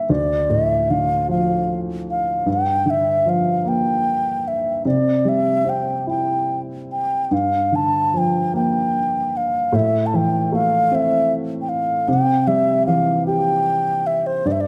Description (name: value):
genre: celtic folk, Celtic slow air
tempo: 50 BPM (dotted quarters)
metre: 6/8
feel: rubato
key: G dorian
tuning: A4 = 443 Hz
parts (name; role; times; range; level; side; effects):
- baroque flute; melody; 0.0-14.7 s; C5 to A5; -21 LUFS; equal; none
- dark upright piano; accompaniment; 0.0-14.7 s; D2 to G4; -23 LUFS; equal; none
room: moderate scoring stage reverb, RT60 1.6 s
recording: none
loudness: -19 LUFS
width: mono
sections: 0.0-14.7 A section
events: none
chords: 0.1 Dm; 2.5 Gm7; 4.8 C; 7.3 Gm7; 9.7 Am; 12.1 C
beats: | 0.09 1.29 | 2.47 3.65 | 4.85 6.07 | 7.32 8.54 | 9.74 10.92 | 12.08 13.26 | 14.45